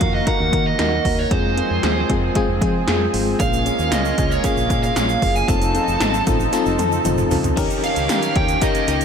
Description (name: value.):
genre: 1980s-style pop.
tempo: 115 BPM.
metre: 4/4.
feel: straight.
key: unclear.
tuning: A4 = 440 Hz.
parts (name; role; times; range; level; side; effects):
dark smooth lead guitar; melody; 0.0-9.0 s; C5 to A5; -23 LUFS; right 2 dB; overdrive, ping-pong delay.
FM electric piano with tremolo; accompaniment; 0.0-9.0 s; Ab3 to Bb4; -22 LUFS; left 4 dB; none.
lush unison pad; sustained chords; 0.0-9.0 s; Eb3 to A4; -26 LUFS; right 2 dB; chorus.
fingered electric bass; bass; 0.0-9.0 s; F1 to F3; -24 LUFS; right 1 dB; none.
80s electronic pad drums; drums; 0.0-9.0 s; crash cymbal, hi-hat, kick drum, snare drum, tambourine, toms; -22 LUFS; right 1 dB; gated reverb on snare and toms.
tube shaker; percussion; 3.4-9.0 s; none; -35 LUFS; right 14 dB; none.
distorted electric guitar; accompaniment; 7.6-9.0 s; Eb3 to Eb4; -30 LUFS; right 1 dB; distortion, ensemble chorus.
room: wet cathedral reverb, RT60 6.8 s.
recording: dreamy mix soaked in reverb.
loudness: -16 LUFS.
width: side -7 dB against mid.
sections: 0.0-7.6 A section; 7.6-9.0 B section.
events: drum fill 6.5-7.6.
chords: 0.0 Ebm; 1.3 Fm; 3.4 Bbm7; 5.5 F7; 7.6 Eb7.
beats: 0.27 0.79 | 1.31 1.83 2.35 2.88 | 3.40 3.92 4.44 4.96 | 5.49 6.01 6.53 7.05 | 7.57 8.10 8.62.